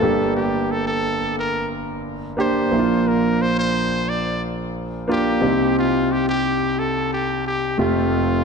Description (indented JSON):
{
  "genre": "pop",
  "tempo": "89 BPM",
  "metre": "4/4",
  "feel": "straight",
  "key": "unclear",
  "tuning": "A4 = 441 Hz",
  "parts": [
    { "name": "brilliant trumpet", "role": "melody", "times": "0.0-8.4 s", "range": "F4 to D5", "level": "-23 LUFS", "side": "equal", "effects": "none" },
    { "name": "warm concert grand piano", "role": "accompaniment", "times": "0.0-8.4 s", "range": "F1 to G4", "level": "-20 LUFS", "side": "equal", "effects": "none" }
  ],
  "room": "wet concert hall reverb, RT60 1.8 s",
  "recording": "dark, warm production",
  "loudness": "-18 LUFS",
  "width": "side -5 dB against mid",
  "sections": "0.0-8.4 A section",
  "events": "none",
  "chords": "0.0 Gm; 2.7 Bb; 5.4 Cm; 7.8 Fadd9"
}